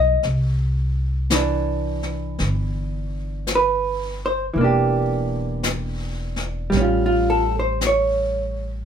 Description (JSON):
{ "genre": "jazz ballad", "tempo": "56 BPM", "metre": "4/4", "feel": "swing 66% on 8ths", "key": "C major", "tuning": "A4 = 441 Hz", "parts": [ { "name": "vintage hollow-body jazz guitar", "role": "accompaniment", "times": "0.0-8.8 s", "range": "E3 to Eb5", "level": "-21 LUFS", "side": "right 1 dB", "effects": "none" }, { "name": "upright bass", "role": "bass", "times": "0.0-8.8 s", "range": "E1 to C2", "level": "-24 LUFS", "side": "equal", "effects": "none" }, { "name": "jazz brush drum kit", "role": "drums", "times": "0.2-8.8 s", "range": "brushed snare drum, hi-hat, snare drum", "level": "-27 LUFS", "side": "left 3 dB", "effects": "none" } ], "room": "moderate studio reverb, RT60 0.6 s", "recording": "minimal, uncompressed stereo recording", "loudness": "-19 LUFS", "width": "side -8 dB against mid", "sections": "0.0-8.8 A section", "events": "none", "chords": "0.2 Cadd9; 4.6 Em7b5; 6.7 Aaug7" }